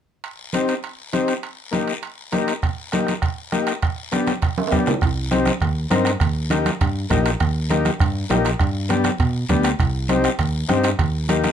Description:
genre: latin, cumbia.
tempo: 201 BPM.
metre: 4/4.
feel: straight.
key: C minor.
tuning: A4 = 439 Hz.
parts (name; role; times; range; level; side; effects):
guiro; percussion; 0.2-11.5 s; none; -33 LUFS; left 6 dB; none.
timbales; percussion; 0.2-11.5 s; none; -30 LUFS; right 7 dB; none.
overdriven combo organ; accompaniment; 0.5-11.5 s; Bb3 to Bb4; -21 LUFS; left 4 dB; none.
congas; percussion; 0.5-11.5 s; none; -25 LUFS; right 1 dB; none.
bombo; percussion; 2.6-11.5 s; none; -23 LUFS; right 3 dB; none.
fingered electric bass; bass; 5.0-11.5 s; Bb1 to B2; -23 LUFS; right 1 dB; none.
room: light reverb.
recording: minimal, uncompressed stereo recording.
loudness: -18 LUFS.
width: side -9 dB against mid.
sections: 0.2-5.0 A section; 5.0-11.5 B section.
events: drum fill 4.6-5.0.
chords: 0.2 Cm; 1.4 Eb; 3.8 G; 5.0 Cm; 6.2 Eb; 8.6 G; 9.8 Cm; 11.0 Eb.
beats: | 0.23 0.53 0.83 1.13 | 1.43 1.73 2.03 2.33 | 2.62 2.92 3.22 3.52 | 3.82 4.12 4.42 4.71 | 5.01 5.31 5.61 5.91 | 6.21 6.50 6.80 7.10 | 7.40 7.70 8.00 8.30 | 8.60 8.89 9.19 9.49 | 9.79 10.09 10.39 10.69 | 10.99 11.29.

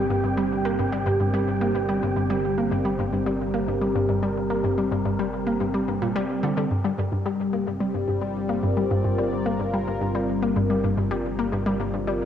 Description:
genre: ambient, sequencer-driven space music.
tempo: 109 BPM.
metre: 4/4.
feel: straight.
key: G minor.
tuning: A4 = 440 Hz.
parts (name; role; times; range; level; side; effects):
sweeping resonant pad; sustained chords; 0.0-12.3 s; G3 to D5; -25 LUFS; equal; chorus.
analog pluck; riff; 0.0-12.2 s; G2 to Bb3; -25 LUFS; left 1 dB; chorus, ping-pong delay.
fat analog bass; bass; 0.0-12.3 s; G1; -33 LUFS; equal; none.
wind-like tuned noise texture; texture; 0.0-6.7 s; G4 to G5; -34 LUFS; equal; built-in reverb.
room: wet spring reverb, RT60 1.8 s.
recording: home recording on cassette.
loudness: -22 LUFS.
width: side -9 dB against mid.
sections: 0.0-6.7 A section; 6.7-12.3 B section.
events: none.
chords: 0.0 Gm.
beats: | 0.10 0.65 1.20 1.75 | 2.30 2.85 3.40 3.95 | 4.50 5.05 5.60 6.16 | 6.71 7.25 7.81 8.36 | 8.91 9.46 10.01 10.56 | 11.11 11.66 12.21.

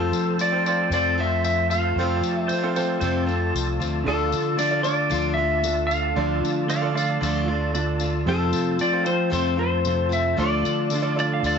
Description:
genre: folk rock and heartland rock.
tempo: 114 BPM.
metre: 4/4.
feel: straight.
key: D minor.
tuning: A4 = 440 Hz.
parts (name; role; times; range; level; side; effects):
clean lap steel guitar; melody; 0.0-11.6 s; A4 to F5; -24 LUFS; left 1 dB; none.
bright upright piano; accompaniment; 0.0-11.6 s; C4 to D5; -32 LUFS; right 7 dB; none.
picked plugged-in steel-string acoustic guitar; accompaniment; 0.0-11.6 s; F2 to F4; -28 LUFS; left 4 dB; none.
tonewheel organ; sustained chords; 0.0-11.6 s; F4 to A5; -33 LUFS; equal; slow rotary speaker, overdrive, chorus vibrato.
fingered electric bass; bass; 0.0-11.6 s; C2 to F3; -26 LUFS; equal; none.
tambourine; percussion; 0.1-11.6 s; none; -35 LUFS; left 12 dB; none.
pedal steel guitar; second line; 2.5-3.5, 6.7-11.6 s; F4 to F5; -27 LUFS; right 4 dB; none.
mellow electric guitar; riff; 4.0-11.6 s; F2 to F4; -29 LUFS; right 4 dB; none.
room: light reverb, studio reverb.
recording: nothing above 7.6 kHz.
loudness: -20 LUFS.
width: side -6 dB against mid.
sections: 0.0-11.6 A section.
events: none.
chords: 0.0 F; 4.1 Dm; 8.3 F; 10.4 Dm.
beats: 0.39 0.92 1.44 | 1.97 2.49 3.02 3.54 | 4.07 4.59 5.12 5.64 | 6.17 6.70 7.22 7.75 | 8.27 8.80 9.33 9.85 | 10.38 10.91 11.44.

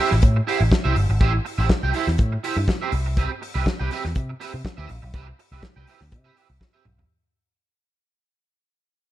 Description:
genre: disco.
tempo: 122 BPM.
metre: 4/4.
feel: straight.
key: unclear.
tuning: A4 = 440 Hz.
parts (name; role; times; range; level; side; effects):
electric guitar at the edge of break-up; accompaniment; 0.0-7.0 s; C4 to G5; -26 LUFS; right 6 dB; ensemble chorus.
picked electric bass with an envelope filter; bass; 0.1-7.0 s; G1 to C3; -22 LUFS; equal; none.
warm soul drum kit; drums; 0.1-7.1 s; hi-hat, kick drum, snare drum, toms; -23 LUFS; equal; none.
room: small room ambience.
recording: dark, warm production.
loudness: -19 LUFS.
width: side -14 dB against mid.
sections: 0.0-7.1 A section.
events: fade-out 0.0-7.1; drum fill 6.6-7.1.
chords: 0.0 Am7; 2.9 Cmaj7.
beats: 0.23 0.72 | 1.21 1.70 2.19 2.68 | 3.17 3.66 4.15 4.64 | 5.13 5.62 6.12 6.61.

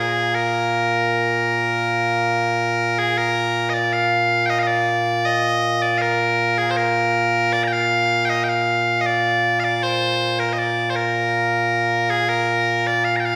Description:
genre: scottish traditional.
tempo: 79 BPM.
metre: 3/4.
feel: straight.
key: Bb mixolydian.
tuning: A4 = 441 Hz.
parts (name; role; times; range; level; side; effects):
loud bright bagpipes; solo; 0.0-13.4 s; Bb2 to Bb5; -19 LUFS; equal; none.
room: wet recital hall reverb, RT60 1.4 s.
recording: recorded in a church or concert hall.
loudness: -19 LUFS.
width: mono.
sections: 0.0-3.0 A section; 3.0-13.4 B section.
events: none.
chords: none.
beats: | 0.71 1.47 2.23 | 2.99 3.75 4.51 | 5.27 6.03 6.79 | 7.55 8.31 9.07 | 9.83 10.59 11.35 | 12.10 12.86.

